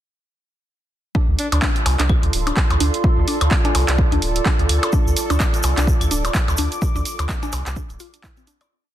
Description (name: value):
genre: minimal techno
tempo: 127 BPM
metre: 4/4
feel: swing 58% on 16ths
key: D minor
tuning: A4 = 437 Hz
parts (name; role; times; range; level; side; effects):
- mallet-like synth pluck; riff; 1.1-8.6 s; C4 to D5; -29 LUFS; equal; chorus, sidechain pumping, dub echo
- electronic kick drum; drums; 1.1-8.3 s; none; -19 LUFS; equal; none
- warbly tape-like pad; texture; 1.6-8.7 s; F4 to D6; -28 LUFS; right 3 dB; chorus, built-in reverb, sidechain pumping
- bubbling stepped-filter texture; texture; 1.5-8.7 s; A4; -32 LUFS; equal; chorus, built-in reverb, sidechain pumping
- saturated sub bass; bass; 1.3-8.0 s; D1 to D2; -20 LUFS; equal; tube saturation, sidechain pumping
- warm alto saxophone; melody; 1.4-1.6 s; D4; -31 LUFS; left 1 dB; none
- punchy analog drum machine; drums; 1.4-8.7 s; handclaps, hi-hat; -24 LUFS; right 1 dB; none
- percussion blips and claves; percussion; 1.5-8.7 s; none; -27 LUFS; left 2 dB; overdrive, dub echo
- egg shaker; percussion; 4.9-8.7 s; none; -32 LUFS; right 1 dB; none
room: light reverb, digital ambience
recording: dense, heavily limited modern master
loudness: -16 LUFS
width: side -12 dB against mid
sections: 1.1-8.7 drop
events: drop 1.1-8.7; fade-out 6.2-8.7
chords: 1.1 Dm7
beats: | 1.15 1.62 2.09 2.57 | 3.04 3.51 3.98 4.46 | 4.93 5.40 5.87 6.35 | 6.82 7.29 7.76 8.24